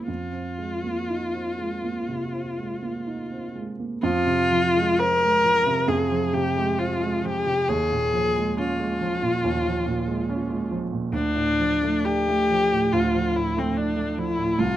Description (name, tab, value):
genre	classical, impressionist duo for viola and grand piano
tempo	59-74 BPM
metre	4/4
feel	rubato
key	F dorian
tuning	A4 = 445 Hz
part	warm viola	melody	0.0-14.8 s	C4 to Bb4	-23 LUFS	left 2 dB	none
part	dark grand piano	accompaniment	0.0-14.8 s	C2 to E4	-26 LUFS	right 3 dB	none
room	moderate large studio reverb, RT60 1.4 s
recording	close, detailed microphones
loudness	-21 LUFS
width	side -12 dB against mid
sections	0.0-4.0 A section; 4.0-14.8 B section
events	none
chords	0.1 Fm7; 4.0 Fm; 7.7 Eb9sus4; 11.1 Dm